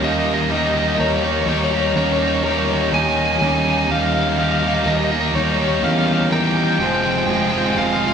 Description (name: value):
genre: post-rock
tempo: 62 BPM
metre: 4/4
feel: straight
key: unclear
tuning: A4 = 439 Hz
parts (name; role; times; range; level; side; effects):
- lightly driven lead guitar; melody; 0.0-8.1 s; Db5 to Ab5; -22 LUFS; left 1 dB; none
- rich studio string section; sustained chords; 0.0-8.1 s; Db5 to C6; -32 LUFS; equal; none
- electric guitar through a small old amp; arpeggios; 0.0-8.1 s; F2 to Bb4; -28 LUFS; right 3 dB; spring reverb
- vibraphone with medium mallets; arpeggios; 0.0-8.1 s; C5 to F5; -28 LUFS; left 1 dB; none
- sludgy distorted guitar; riff; 0.0-8.1 s; F2 to Ab4; -23 LUFS; left 6 dB; overdrive
- tight distorted guitar; riff; 0.0-8.1 s; F2 to Ab4; -22 LUFS; right 7 dB; distortion
- fuzz fingered electric bass; bass; 0.0-8.1 s; F1 to E2; -23 LUFS; equal; overdrive
room: moderate stone room reverb, RT60 1.1 s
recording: band playing live in one room, studio reverb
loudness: -16 LUFS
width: side -7 dB against mid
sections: 0.0-8.1 A section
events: none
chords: 0.0 Eb7(no3); 6.8 Fm7